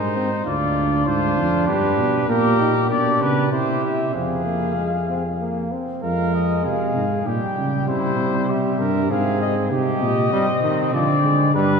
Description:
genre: classical, imitative canzona for brass ensemble.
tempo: 98 BPM.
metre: 3/4.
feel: straight.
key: F minor.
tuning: A4 = 435 Hz.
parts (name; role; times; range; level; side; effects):
mellow cornet; melody; 0.0-11.8 s; G4 to G5; -24 LUFS; left 6 dB; none.
mellow trumpet; second line; 0.0-11.8 s; C4 to Bb4; -26 LUFS; right 3 dB; none.
clear trombone; accompaniment; 0.0-11.8 s; C3 to E4; -24 LUFS; right 2 dB; none.
mellow tuba; bass; 0.0-11.8 s; D2 to D3; -22 LUFS; right 1 dB; none.
room: wet church reverb, RT60 3.6 s.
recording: heard from further back in the room.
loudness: -18 LUFS.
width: side -5 dB against mid.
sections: 0.0-6.0 A section; 6.0-11.8 B section.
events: none.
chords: 0.5 Ddim; 1.7 G; 2.3 Eb/Bb; 2.9 G/B; 3.5 C; 4.1 Fm; 7.3 Gdim/Bb; 7.9 C; 9.1 Fm/Ab; 9.7 Cm; 10.9 Ddim.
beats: | 0.47 1.08 1.68 | 2.29 2.91 3.52 | 4.15 4.77 5.40 | 6.03 6.65 7.26 | 7.88 8.49 9.11 | 9.72 10.32 10.93 | 11.55.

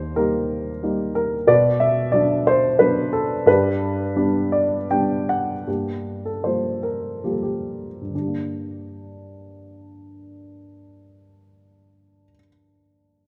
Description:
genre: classical, lyrical solo piano.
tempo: 63-92 BPM.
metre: 3/4.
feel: rubato.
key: G major, G minor from 5.7 s.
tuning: A4 = 440 Hz.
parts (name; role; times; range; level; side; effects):
dark upright piano; solo; 0.0-13.3 s; Eb2 to G5; -21 LUFS; equal; none.
room: light reverb.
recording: none.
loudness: -21 LUFS.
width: mono.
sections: 0.0-5.7 A section; 5.7-8.1 B section; 8.1-13.3 C section.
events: slowing down 3.5-8.1; upright piano fill 4.2-5.7.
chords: 0.0 Eb; 1.5 Bm; 3.5 G; 5.7 Gm7; 8.1 Gm.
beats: 0.17 0.83 | 1.48 2.14 2.80 | 3.47 4.16 4.90 | 5.68 6.45 7.24 | 8.13 9.06 9.94 | 10.83 11.72 12.63.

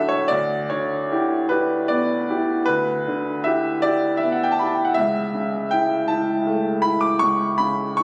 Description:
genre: classical, romantic nocturne for solo piano.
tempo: 49-55 BPM (dotted quarters).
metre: 12/8.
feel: rubato.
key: unclear.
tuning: A4 = 440 Hz.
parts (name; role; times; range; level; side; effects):
clear baby grand piano; solo; 0.0-8.0 s; C#2 to D6; -21 LUFS; equal; none.
room: wet recital hall reverb, RT60 1.7 s.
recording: recorded on a phone in the room, club reverb, compression.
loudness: -21 LUFS.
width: mono.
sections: 0.0-8.0 A section.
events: none.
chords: 0.3 Em7/D; 5.0 A/C#.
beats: | 0.30 1.51 2.68 3.83 | 4.97 6.10 7.21.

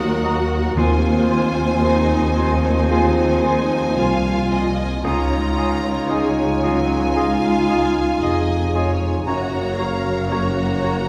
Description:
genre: cinematic, emotional film score for orchestra.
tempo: 57 BPM.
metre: 4/4.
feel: rubato.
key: unclear.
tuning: A4 = 440 Hz.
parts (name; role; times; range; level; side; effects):
clear symphonic violin section; melody; 0.0-11.1 s; Gb5 to Bb5; -31 LUFS; equal; none.
rich studio violin section; second line; 0.0-11.1 s; Bb4 to F5; -31 LUFS; equal; none.
clear concert grand piano; accompaniment; 0.0-11.1 s; Db2 to Bb4; -29 LUFS; equal; none.
rich studio viola section; accompaniment; 0.0-11.1 s; Gb3 to F5; -30 LUFS; equal; none.
mellow French horn section; sustained chords; 0.0-11.1 s; F3 to Gb4; -25 LUFS; equal; none.
warm studio cello section; bass; 0.0-11.1 s; C2 to Gb2; -27 LUFS; equal; none.
warm studio double bass section; bass; 0.0-11.1 s; F1 to Eb2; -26 LUFS; equal; none.
clear clarinet; second line; 0.2-11.0 s; F4 to Gb4; -32 LUFS; equal; none.
mellow cor anglais; second line; 0.2-11.0 s; C5 to Eb5; -34 LUFS; equal; none.
silver concert flute; second line; 0.2-10.9 s; Ab5 to Bb5; -34 LUFS; equal; none.
room: wet concert hall reverb, RT60 2.0 s.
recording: heard from further back in the room.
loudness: -19 LUFS.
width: mono.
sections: 0.0-11.1 A section.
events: none.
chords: 0.0 Ebm; 0.8 Ab6/Eb; 5.0 Dbadd9.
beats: | 0.77 1.84 2.90 3.98 | 5.04 6.09 7.14 8.21 | 9.26 10.30.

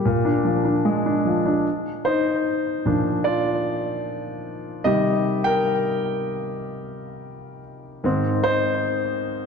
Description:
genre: pop.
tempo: 75 BPM.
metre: 4/4.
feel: straight.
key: unclear.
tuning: A4 = 439 Hz.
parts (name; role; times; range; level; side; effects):
warm concert grand piano; solo; 0.0-9.5 s; Ab2 to G5; -21 LUFS; left 1 dB; ping-pong delay.
room: moderate concert hall reverb, RT60 2.3 s.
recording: dark, warm production.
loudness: -20 LUFS.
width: side -6 dB against mid.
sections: 0.0-1.6 A section; 1.6-9.5 B section.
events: grand piano solo 1.6-9.5.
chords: 0.0 Bb7; 1.6 Bb; 4.8 Cm; 8.0 Ab.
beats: 0.04 0.84 | 1.65 2.44 3.25 4.04 | 4.84 5.64 6.45 7.25 | 8.04 8.85.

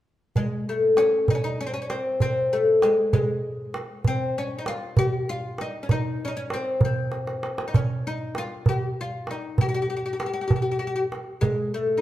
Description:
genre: Arabic maqam ensemble.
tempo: 65 BPM (dotted quarters).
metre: 6/8.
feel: straight.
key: unclear.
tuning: A4 = 440 Hz.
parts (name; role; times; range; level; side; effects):
oud; melody; 0.4-12.0 s; Ab3 to Gb4+50c; -24 LUFS; left 2 dB; none.
darbuka; percussion; 0.4-11.6 s; none; -26 LUFS; right 2 dB; none.
room: wet large studio reverb, RT60 1.4 s.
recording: band playing live in one room.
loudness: -22 LUFS.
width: side -13 dB against mid.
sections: 0.4-12.0 A section.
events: drum fill 7.1-7.7.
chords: none.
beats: | 0.35 1.28 | 2.20 3.13 | 4.05 4.97 | 5.90 6.82 | 7.74 8.66 | 9.59 10.51 | 11.43.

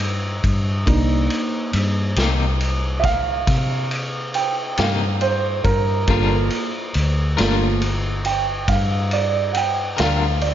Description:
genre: slow blues.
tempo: 46 BPM (dotted quarters).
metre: 12/8.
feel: straight.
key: unclear.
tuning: A4 = 440 Hz.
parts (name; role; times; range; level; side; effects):
vintage muted fingered electric bass; bass; 0.0-10.5 s; G1 to C3; -21 LUFS; left 1 dB; none.
vintage drum kit; drums; 0.0-10.5 s; kick drum, ride cymbal, snare drum; -24 LUFS; left 1 dB; none.
dark upright piano; accompaniment; 0.9-10.5 s; A3 to G5; -23 LUFS; right 4 dB; slapback echo.
electric guitar at the edge of break-up; accompaniment; 2.2-10.2 s; C3 to Bb4; -26 LUFS; left 6 dB; tremolo, slapback echo.
room: light reverb, studio ambience.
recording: nothing above 7.4 kHz.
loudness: -18 LUFS.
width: side -10 dB against mid.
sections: 0.0-10.5 A section.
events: upright piano solo 0.0-10.5.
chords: 0.0 Cm7; 6.1 Gm7.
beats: | 0.88 2.18 3.48 4.78 | 6.09 7.39 8.69 9.99.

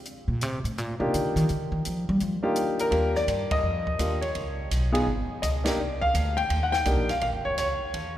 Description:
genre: jazz piano trio.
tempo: 167 BPM.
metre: 4/4.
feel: swing 65% on 8ths.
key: Eb major.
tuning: A4 = 440 Hz.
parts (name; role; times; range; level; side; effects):
compact cocktail drum kit; drums; 0.1-8.0 s; hi-hat, kick drum, ride cymbal, snare drum; -34 LUFS; right 2 dB; none.
upright bass; bass; 0.3-8.2 s; F1 to G3; -28 LUFS; equal; none.
warm concert grand piano; melody; 1.0-8.2 s; Bb3 to G5; -26 LUFS; left 1 dB; none.
room: wet cathedral reverb, RT60 4.5 s.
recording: recorded in a church or concert hall.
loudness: -24 LUFS.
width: side -12 dB against mid.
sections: 0.0-2.9 A section; 2.9-8.2 B section.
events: upright bass solo 0.0-2.9; band accent 3.5, 5.6.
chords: 0.1 Ebmaj9; 4.4 Db7sus2; 5.8 Cmadd9; 7.2 Bbm7.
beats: | 0.06 0.41 0.77 1.13 | 1.49 1.84 2.20 2.56 | 2.92 3.28 3.63 3.99 | 4.35 4.71 5.07 5.43 | 5.79 6.14 6.50 6.86 | 7.22 7.58 7.94.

